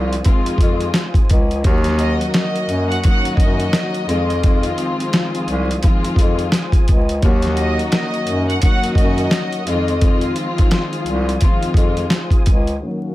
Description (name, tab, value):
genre	hip hop, boom-bap hip-hop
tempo	86 BPM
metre	4/4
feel	swing 61% on 16ths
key	unclear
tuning	A4 = 440 Hz
part	dark studio string section	accompaniment	0.0-13.1 s	Eb3 to Gb4	-22 LUFS	left 2 dB	cassette tape, low-pass filter, plate reverb
part	tonewheel organ	sustained chords	0.0-12.8 s	F4 to Eb6	-31 LUFS	right 1 dB	chorus vibrato, slow rotary speaker, plate reverb
part	warm bass clarinet	bass	0.0-12.8 s	C2 to Gb2	-20 LUFS	equal	none
part	boom bap sampler-style drum kit	drums	0.1-12.8 s	hi-hat, kick drum, snare drum	-16 LUFS	equal	none
part	warm studio violin section	melody	2.0-10.0 s	Eb5 to Gb5	-25 LUFS	right 1 dB	low-pass filter, digital delay, plate reverb
room	light reverb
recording	vinyl crackle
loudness	-14 LUFS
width	side -16 dB against mid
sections	0.0-12.8 A section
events	none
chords	0.0 Fm7; 1.6 Ebm7; 4.1 Fm7; 7.2 Ebm7; 9.7 Fm7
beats	0.25 0.94 | 1.64 2.34 3.04 3.73 | 4.43 5.13 5.83 6.53 | 7.22 7.92 8.62 9.32 | 10.01 10.71 11.41 12.11 | 12.80